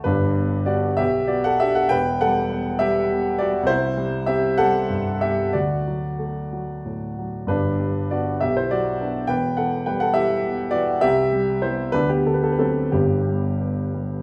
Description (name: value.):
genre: classical, romantic character piece for solo piano.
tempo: 58-70 BPM (dotted quarters).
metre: 6/8.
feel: rubato.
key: G major.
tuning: A4 = 441 Hz.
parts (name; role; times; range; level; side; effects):
warm baby grand piano; solo; 0.0-14.2 s; E1 to G5; -22 LUFS; equal; none.
room: wet large studio reverb, RT60 1.3 s.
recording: none.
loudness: -22 LUFS.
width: mono.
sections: 0.1-14.2 A section.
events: none.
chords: 0.1 G; 1.0 Bm; 1.9 Em; 3.7 C; 5.5 D; 7.5 G; 8.4 Bm; 9.3 Em; 11.0 Cmaj7; 11.9 D; 12.9 G.